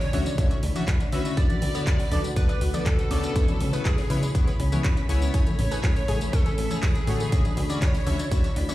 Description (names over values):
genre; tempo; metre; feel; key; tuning
progressive house; 121 BPM; 4/4; straight; unclear; A4 = 440 Hz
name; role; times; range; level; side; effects
plucky unison lead; melody; 0.0-8.5 s; G#4 to D5; -35 LUFS; equal; phaser, dub echo
warm symphonic violin section; second line; 0.0-8.5 s; G#4 to D5; -39 LUFS; right 2 dB; sidechain pumping, dub echo
shimmering ambient pad; sustained chords; 0.0-8.7 s; C#3 to G#5; -35 LUFS; equal; chorus, built-in reverb, phaser, sidechain pumping
analog pluck; arpeggios; 0.0-8.7 s; A3 to D5; -36 LUFS; left 1 dB; chorus, sidechain pumping, dub echo
big-room dance drum kit; drums; 0.0-8.7 s; handclaps, hi-hat, tambourine; -36 LUFS; equal; none
backwards swelling texture; texture; 0.0-8.7 s; B5 to B6; -43 LUFS; equal; built-in reverb, sidechain pumping
chorused polysynth; stabs; 0.1-8.7 s; A2 to E5; -32 LUFS; left 2 dB; sidechain pumping, dub echo
plucky analog bass; bass; 0.1-8.7 s; A1 to D2; -26 LUFS; equal; sidechain pumping
congas; percussion; 0.1-8.7 s; none; -34 LUFS; left 2 dB; none
electronic kick drum; drums; 0.4-8.4 s; none; -23 LUFS; equal; none
room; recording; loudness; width
little or no reverb; played on a big sound system in a bare room, large studio reverb; -21 LUFS; side -16 dB against mid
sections
0.0-8.7 A section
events
none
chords
0.0 Dmaj9; 1.4 Bm7/D; 3.4 C#m7; 5.3 Amaj7; 7.3 Dmaj9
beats
0.38 0.88 | 1.37 1.87 2.36 2.86 | 3.36 3.85 4.35 4.84 | 5.34 5.83 6.33 6.83 | 7.32 7.82 8.31